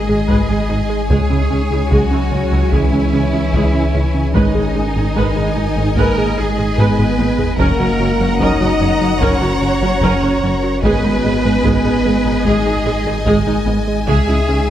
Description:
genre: cinematic, hybrid orchestral and electronic film score.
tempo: 74 BPM.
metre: 4/4.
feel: straight.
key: G# minor.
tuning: A4 = 441 Hz.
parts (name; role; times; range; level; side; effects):
rich symphonic violin section; second line; 0.0-14.7 s; C#5 to A#5; -25 LUFS; left 4 dB; none.
dark French horn section; sustained chords; 0.0-14.7 s; D#3 to D#4; -22 LUFS; left 2 dB; none.
glassy FM pad; sustained chords; 0.0-14.7 s; G#3 to D#5; -24 LUFS; equal; ensemble chorus, built-in reverb.
rich symphonic cello section; bass; 0.0-14.7 s; D#4 to D#5; -22 LUFS; right 2 dB; none.
saturated sub bass; bass; 0.0-14.7 s; F#1 to C#2; -21 LUFS; equal; none.
warm symphonic viola section; accompaniment; 0.1-14.7 s; G#3 to B4; -22 LUFS; right 1 dB; none.
fat analog bass; riff; 0.1-14.6 s; C#2 to G#3; -20 LUFS; right 1 dB; none.
clear symphonic double bass section; bass; 0.1-14.6 s; F#1 to C#2; -23 LUFS; right 2 dB; none.
taiko ensemble; drums; 0.3-14.7 s; none; -21 LUFS; left 1 dB; none.
room: moderate scoring stage reverb, RT60 1.5 s.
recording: none.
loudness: -13 LUFS.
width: side -11 dB against mid.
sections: 0.0-14.7 A section.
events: drum fill 6.8-7.6.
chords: 0.0 G#m; 1.1 C#m; 4.3 G#m; 7.6 F#; 10.8 G#m; 14.1 C#m.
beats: 0.29 | 1.10 1.91 2.73 3.54 | 4.35 5.16 5.97 6.78 | 7.59 8.40 9.21 10.02 | 10.83 11.64 12.45 13.27 | 14.08.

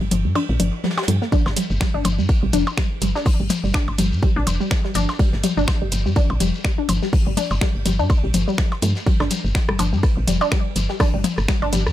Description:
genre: minimal techno.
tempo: 124 BPM.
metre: 4/4.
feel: swing 57% on 16ths.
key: G minor.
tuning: A4 = 439 Hz.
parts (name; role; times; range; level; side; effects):
resonant blip pluck; riff; 0.0-11.8 s; G3 to G4; -25 LUFS; equal; chorus, phaser, sidechain pumping, digital delay.
woody FM bass; bass; 0.0-11.9 s; F1 to G2; -22 LUFS; equal; sidechain pumping.
soft brush drum kit; drums; 0.0-11.9 s; hi-hat, ride cymbal, snare drum; -34 LUFS; right 2 dB; sidechain pumping on cymbals, high-pass filter on cymbals, sidechain pumping on hats, high-pass filter on hats, high-pass filter on snare, high-pass filter on room.
booming analog drum machine; drums; 0.1-11.8 s; finger snaps, hi-hat; -25 LUFS; right 2 dB; none.
minimal click drum kit; percussion; 0.1-11.9 s; percussion blips, rim click, toms; -25 LUFS; left 4 dB; overdrive, digital delay.
electronic kick drum; drums; 1.3-11.6 s; none; -19 LUFS; equal; none.
shekere; percussion; 1.3-11.9 s; none; -33 LUFS; left 6 dB; none.
room: little or no reverb.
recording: none.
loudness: -17 LUFS.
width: side -13 dB against mid.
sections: 0.0-11.9 A section.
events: filter sweep on synth pluck 0.0-11.9; kick drops out 0.4-1.3.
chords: 0.0 G5.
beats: 0.36 0.84 | 1.32 1.81 2.29 2.77 | 3.26 3.74 4.23 4.71 | 5.20 5.68 6.16 6.65 | 7.13 7.61 8.10 8.58 | 9.07 9.55 10.03 10.52 | 11.00 11.48.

